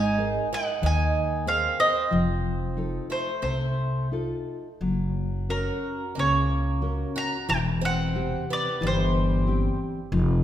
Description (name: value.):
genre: fado-style ballad.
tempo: 90 BPM.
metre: 4/4.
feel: uneven beats, rubato.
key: unclear.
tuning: A4 = 440 Hz.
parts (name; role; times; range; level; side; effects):
bowl-back mandolin; melody; 0.0-9.8 s; Bb4 to Bb5; -27 LUFS; equal; none.
picked twelve-string acoustic guitar; second line; 0.0-9.8 s; Gb3 to Gb4; -33 LUFS; right 5 dB; none.
nylon-string guitar; accompaniment; 0.0-10.4 s; C3 to C5; -28 LUFS; left 2 dB; none.
upright bass; bass; 0.0-10.4 s; E1 to Eb2; -27 LUFS; equal; none.
room: wet scoring stage reverb, RT60 1.6 s.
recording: minimal, uncompressed stereo recording.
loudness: -23 LUFS.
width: side -11 dB against mid.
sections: 0.0-10.4 A section.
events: none.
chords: 0.0 Abadd9; 2.1 F7; 4.8 Gb; 7.5 C/E.